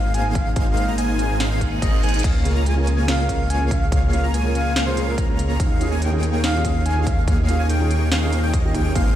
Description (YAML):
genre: future bass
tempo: 143 BPM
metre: 4/4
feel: half-time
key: unclear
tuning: A4 = 442 Hz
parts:
  - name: breathy flute-like synth lead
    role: melody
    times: 0.0-7.6 s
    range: Bb4 to Ab5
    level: -30 LUFS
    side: left 1 dB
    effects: chorus, sidechain pumping, digital delay
  - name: airy dreamy lead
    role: arpeggios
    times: 0.0-9.2 s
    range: Eb5 to Bb5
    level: -30 LUFS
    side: equal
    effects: chorus, sidechain pumping, tape echo
  - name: dense compressed supersaw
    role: riff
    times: 0.0-9.2 s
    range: Bb3 to Bb5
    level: -26 LUFS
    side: equal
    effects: sidechain pumping
  - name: wide detuned saw bass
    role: bass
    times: 0.0-9.2 s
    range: Ab1 to Eb2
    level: -21 LUFS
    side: equal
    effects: chorus, sidechain pumping
  - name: trap drum kit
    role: drums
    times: 0.1-9.0 s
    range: crash cymbal, hi-hat, snare drum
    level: -28 LUFS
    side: equal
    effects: none
  - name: electronic kick drum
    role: drums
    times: 0.4-9.0 s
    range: none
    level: -21 LUFS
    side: equal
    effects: none
  - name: reverse cymbal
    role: sound effects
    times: 1.6-2.2 s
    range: none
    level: -36 LUFS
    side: right 5 dB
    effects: none
  - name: dark grand piano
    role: accompaniment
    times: 2.4-8.9 s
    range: Db3 to C5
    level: -29 LUFS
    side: right 3 dB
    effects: sidechain pumping, tape echo
room: little or no reverb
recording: played on a big sound system in a bare room, stone room reverb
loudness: -17 LUFS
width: side -12 dB against mid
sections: 0.0-9.2 A section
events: reverse cymbal 1.6-2.2; drum fill 2.0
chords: 0.0 Ab69; 2.2 Db6; 5.6 Eb9sus4